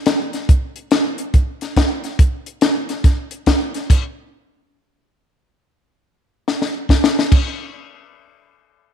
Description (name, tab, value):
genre	blues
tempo	141 BPM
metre	4/4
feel	swing 64% on 8ths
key	none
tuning	none
part	compact cocktail drum kit	drums	0.1-7.4 s	crash cymbal, hi-hat, kick drum, snare drum	-15 LUFS	equal	none
room	light reverb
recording	1960s-style stereo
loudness	-15 LUFS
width	side -9 dB against mid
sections	0.0-7.3 A section; 7.3-8.9 B section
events	stop 3.9-6.9; drum fill 6.5-7.3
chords	none